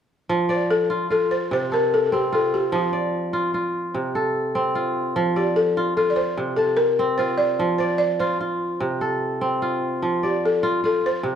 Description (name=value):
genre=west african traditional, West African string and xylophone music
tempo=99 BPM (dotted quarters)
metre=12/8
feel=straight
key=F major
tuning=A4 = 440 Hz
part: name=kora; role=arpeggios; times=0.3-11.4 s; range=C3 to A5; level=-22 LUFS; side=right 1 dB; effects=none
part: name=balafon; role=melody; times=0.5-11.4 s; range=F4 to D5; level=-21 LUFS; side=left 2 dB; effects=none
room=moderate recital hall reverb, RT60 1.4 s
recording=dark, warm production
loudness=-20 LUFS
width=side -8 dB against mid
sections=0.3-11.4 A section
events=none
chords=0.3 F; 1.5 G9sus4/C; 2.7 Dm/F; 3.9 F/C; 5.2 F; 6.4 C7sus4; 7.6 F5; 8.8 F/C; 10.0 F